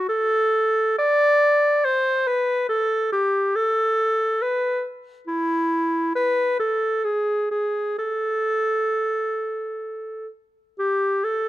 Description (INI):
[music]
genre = classical, baroque-style fantasia for unaccompanied clarinet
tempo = 63-71 BPM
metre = 3/4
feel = rubato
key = A minor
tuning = A4 = 441 Hz
[part]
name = clear clarinet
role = solo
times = 0.0-11.5 s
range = E4 to D5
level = -20 LUFS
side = equal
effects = none
[sound]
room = light reverb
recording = close, detailed microphones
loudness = -19 LUFS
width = side -14 dB against mid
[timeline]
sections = 0.0-10.8 A section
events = none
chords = none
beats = | 0.08 0.98 1.85 | 2.70 3.56 4.42 | 5.28 6.15 7.06 | 8.00 8.94 9.86 | 10.79